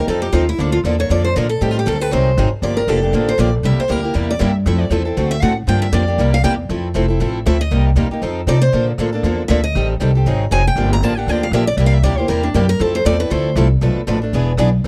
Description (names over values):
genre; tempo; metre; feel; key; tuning
acoustic string swing (jazz manouche); 236 BPM; 4/4; swing 56% on 8ths; F major; A4 = 442 Hz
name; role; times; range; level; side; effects
picked steel-string acoustic guitar; melody; 0.0-13.5 s; D4 to Bb5; -22 LUFS; equal; none
picked steel-string acoustic guitar; accompaniment; 0.0-14.9 s; B2 to A4; -24 LUFS; equal; none
upright bass; bass; 0.0-14.9 s; E1 to C3; -19 LUFS; equal; none
picked steel-string acoustic guitar; accompaniment; 0.1-14.9 s; B2 to B4; -26 LUFS; equal; none
room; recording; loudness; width
little or no reverb; dry, close 1970s-style studio recording; -17 LUFS; mono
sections
0.0-6.7 A section; 6.7-14.8 A section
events
steel-string acoustic guitar solo 0.0-14.8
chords
0.1 F7; 0.6 Bbmaj7#11; 1.6 Am7b5; 2.1 Ab7; 2.6 Gm9; 3.6 C7; 4.7 Fmaj7; 5.2 D7; 5.7 Gm7; 6.2 C7; 6.7 Fmaj7; 7.7 Cm7; 8.2 F7; 8.7 Bbmaj7#11; 9.7 Am7b5; 10.2 Ab7; 10.8 Gm9; 11.8 C7; 12.8 Fmaj7; 13.8 Bm7b5; 14.3 E7